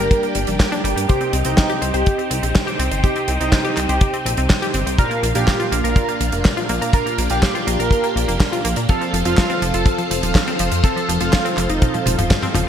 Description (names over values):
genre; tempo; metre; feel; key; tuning
italo disco; 123 BPM; 4/4; straight; unclear; A4 = 440 Hz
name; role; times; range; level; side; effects
wide unison lead; melody; 0.0-12.0 s; Eb4 to Bb4; -24 LUFS; equal; wide subtle chorus, ping-pong delay
phased string machine; sustained chords; 0.0-12.7 s; F3 to C5; -25 LUFS; left 1 dB; ensemble chorus, phaser
analog pluck; arpeggios; 0.0-12.7 s; F3 to C5; -27 LUFS; left 3 dB; chorus, vintage 12-bit sampler grit, ping-pong delay
chorused polysynth; stabs; 0.0-12.7 s; Bb2 to G5; -24 LUFS; right 3 dB; ping-pong delay
chorused synth bass; bass; 0.0-12.7 s; Eb1 to Bb2; -22 LUFS; equal; tube saturation
damped 70s drum kit; drums; 0.1-12.6 s; handclaps, hi-hat, snare drum, toms; -23 LUFS; right 1 dB; gated reverb
kick drum; drums; 0.1-12.4 s; none; -16 LUFS; equal; none
room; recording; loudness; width
moderate lush hall reverb, RT60 1.9 s, small room reverb; bright 1980s-style digital production; -16 LUFS; side -9 dB against mid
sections
0.0-12.7 A section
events
drum fill 11.8-12.7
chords
0.0 Gm; 1.1 Cm; 5.0 Bb; 8.9 F